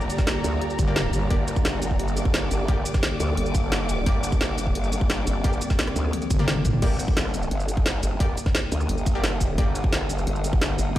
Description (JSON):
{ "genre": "dark technical drum and bass", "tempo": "174 BPM", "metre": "4/4", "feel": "straight", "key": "G minor", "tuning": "A4 = 439 Hz", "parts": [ { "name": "metallic inharmonic drone", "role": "sustained chords", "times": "0.0-11.0 s", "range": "D3 to G4", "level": "-31 LUFS", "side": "left 1 dB", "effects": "chorus, built-in reverb, sidechain pumping" }, { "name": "growl bass", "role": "bass", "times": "0.0-11.0 s", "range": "G1 to D2", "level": "-26 LUFS", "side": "equal", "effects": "chorus, sidechain pumping" }, { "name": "drum and bass drum kit", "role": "drums", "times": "0.0-11.0 s", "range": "crash cymbal, hi-hat, rim click, shaker, snare drum, toms", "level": "-27 LUFS", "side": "equal", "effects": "overdrive" }, { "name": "warm symphonic string section", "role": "texture", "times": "0.0-6.8 s", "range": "G4 to D6", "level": "-33 LUFS", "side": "equal", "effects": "sidechain pumping" }, { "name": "electronic kick drum", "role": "drums", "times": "0.2-11.0 s", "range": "none", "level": "-23 LUFS", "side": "equal", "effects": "none" }, { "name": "growling FM bass", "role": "bass", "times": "0.8-1.3, 6.3-6.8 s", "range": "G1", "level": "-25 LUFS", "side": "equal", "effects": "none" }, { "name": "orchestra-hit-like synth stab", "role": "stabs", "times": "0.9-11.0 s", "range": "Bb3 to D5", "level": "-35 LUFS", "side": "left 1 dB", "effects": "built-in reverb, dub echo" } ], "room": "digital ambience", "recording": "played on a big sound system in a bare room, large studio reverb", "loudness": "-21 LUFS", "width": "side -14 dB against mid", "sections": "0.0-6.8 A section; 6.8-11.0 A section", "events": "drop 0.0-6.8, 6.8-11.0; drum fill 6.1-6.8", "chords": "0.0 Gm" }